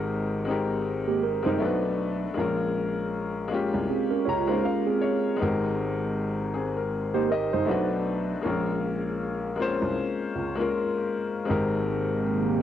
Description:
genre	lo-fi hip hop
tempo	79 BPM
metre	4/4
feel	swing 59% on 16ths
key	unclear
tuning	A4 = 440 Hz
part	warm upright piano	accompaniment	0.0-12.6 s	Ab3 to Bb5	-27 LUFS	left 4 dB	low-pass filter
part	dark baby grand piano	bass	0.0-12.6 s	G1 to Db2	-31 LUFS	right 2 dB	tube saturation
part	mellow tine electric piano	second line	1.1-7.9 s	Bb3 to Db5	-28 LUFS	right 9 dB	auto-pan, low-pass filter, tape echo
part	deep dark ambient pad	sustained chords	12.0-12.6 s	Eb3 to G4	-28 LUFS	right 3 dB	chorus, built-in reverb, low-pass filter
room	moderate small room ambience, RT60 0.5 s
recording	home recording on cassette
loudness	-24 LUFS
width	side -10 dB against mid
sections	0.0-12.6 A section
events	none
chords	0.0 Abmaj9; 1.6 Bm7; 2.4 Bbm7; 5.4 Abmaj9; 7.7 Bm7; 8.4 Bbm7; 11.5 Abmaj9

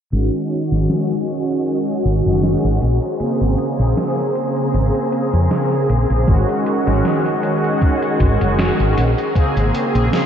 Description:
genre	vaporwave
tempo	78 BPM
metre	4/4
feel	swing 54% on 16ths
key	unclear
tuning	A4 = 440 Hz
part	mellow synth brass	accompaniment	0.1-10.3 s	Db3 to Ab4	-18 LUFS	right 1 dB	analog chorus, tape echo
part	soft string machine	sustained chords	0.1-10.3 s	Gb4 to Bb5	-24 LUFS	equal	ensemble chorus
part	woody fretless electric bass	bass	0.1-10.1 s	Gb1 to F2	-17 LUFS	equal	none
part	gated 80s digital drum machine	drums	0.1-10.3 s	hi-hat, snare drum	-27 LUFS	equal	gated reverb, gated reverb snare, studio reverb
part	electronic kick drum	drums	6.3-9.5 s	none	-15 LUFS	equal	studio reverb
room	moderate huge ambient reverb, RT60 8.2 s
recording	dreamy mix soaked in reverb, cassette tape, low-pass filter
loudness	-15 LUFS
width	side -8 dB against mid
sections	0.1-10.3 A section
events	filter sweep 0.1-10.3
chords	0.1 Ab7sus4; 2.8 Bbm9; 6.3 Ab7sus4; 9.0 Bbm9

